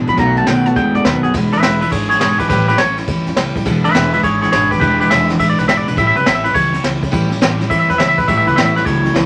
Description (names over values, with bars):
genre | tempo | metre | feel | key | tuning
rockabilly | 208 BPM | 4/4 | swing 65% on 8ths | unclear | A4 = 442 Hz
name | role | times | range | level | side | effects
picked steel-string acoustic guitar | accompaniment | 0.0-9.3 s | E2 to F#4 | -21 LUFS | equal | none
electric guitar through a small old amp | riff | 0.0-1.3, 8.3-9.3 s | E2 to G#3 | -20 LUFS | equal | none
upright bass | bass | 0.0-9.3 s | E1 to F#2 | -25 LUFS | equal | none
twangy electric guitar | melody | 0.1-9.1 s | G4 to B5 | -17 LUFS | equal | none
jazz brush drum kit | drums | 0.1-9.2 s | hi-hat, kick drum, ride cymbal, snare drum | -22 LUFS | equal | none
room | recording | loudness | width
moderate studio ambience, RT60 0.5 s | none | -14 LUFS | mono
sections
0.0-1.3 A section; 1.3-9.3 B section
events
clean electric guitar solo 1.3-9.3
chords
0.2 B7; 1.3 E7; 2.5 A7; 3.7 E7; 6.0 A7